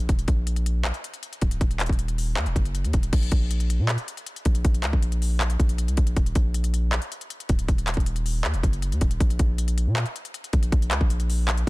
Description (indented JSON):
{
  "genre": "hip hop, trap",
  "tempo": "158 BPM",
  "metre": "4/4",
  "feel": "half-time",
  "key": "unclear",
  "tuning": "A4 = 442 Hz",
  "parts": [
    { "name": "long sustained 808-style bass", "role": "bass", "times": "0.0-11.7 s", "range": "Db1 to Bb2", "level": "-24 LUFS", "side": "equal", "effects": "none" },
    { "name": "trap drum kit", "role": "drums", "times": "0.1-11.7 s", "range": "crash cymbal, handclaps, hi-hat, kick drum", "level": "-24 LUFS", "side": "equal", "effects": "none" }
  ],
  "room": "digital ambience",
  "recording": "dense, heavily limited modern master",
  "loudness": "-22 LUFS",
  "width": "side -21 dB against mid",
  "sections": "0.0-3.1 A section; 3.1-11.7 B section",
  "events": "none",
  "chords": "none"
}